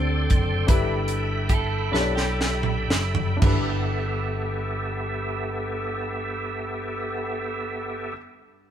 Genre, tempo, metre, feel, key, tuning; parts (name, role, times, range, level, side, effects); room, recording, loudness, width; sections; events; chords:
slow gospel; 36-55 BPM (dotted quarters); 6/8; straight; G major; A4 = 439 Hz
warm grand piano; accompaniment; 0.0-8.7 s; G2 to D5; -31 LUFS; left 2 dB
bright tonewheel organ; sustained chords; 0.0-8.1 s; B3 to C6; -29 LUFS; right 1 dB; fast rotary speaker, chorus vibrato
fingered electric bass; bass; 0.0-8.1 s; F#1 to D2; -28 LUFS; equal
tight funk drum kit; drums; 0.3-3.7 s; crash cymbal, hi-hat, kick drum, snare drum, toms; -23 LUFS; right 1 dB
clean electric guitar; second line; 1.5-3.4 s; G4 to B4; -31 LUFS; right 5 dB
moderate stone room reverb, RT60 1.4 s; band playing live in one room; -23 LUFS; side -10 dB against mid
0.0-3.4 A section; 3.4-8.7 B section
slowing down 0.0-3.4; drum fill 1.9-3.4
0.0 D7sus4; 0.7 G69